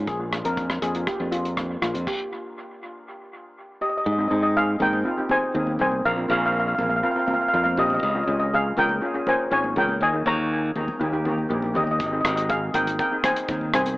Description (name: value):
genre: calypso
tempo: 121 BPM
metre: 4/4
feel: straight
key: Ab major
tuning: A4 = 440 Hz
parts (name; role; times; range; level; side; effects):
- steel pan; accompaniment; 0.0-14.0 s; Bb3 to Bb4; -29 LUFS; equal; dub echo
- modern bright fingered electric bass; bass; 0.0-14.0 s; Ab1 to Ab2; -26 LUFS; equal; none
- steel pan; melody; 0.1-14.0 s; F4 to Bb5; -23 LUFS; equal; dub echo
- warm soul drum kit; drums; 0.1-2.2, 12.0-14.0 s; crash cymbal, hi-hat, kick drum, rim click; -29 LUFS; equal; dub echo
- congas; percussion; 4.8-14.0 s; none; -35 LUFS; left 1 dB; dub echo
room: moderate spring reverb, RT60 2.4 s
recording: echo-heavy mix, AM radio sound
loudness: -21 LUFS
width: side -19 dB against mid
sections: 0.0-4.1 A section; 4.1-14.0 B section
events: stop 2.1-4.1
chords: 0.1 Bb; 2.1 N.C.; 4.1 Ab; 6.0 Bbsus2; 8.0 Db; 10.0 Ebsus4; 11.0 Eb; 12.0 Abadd9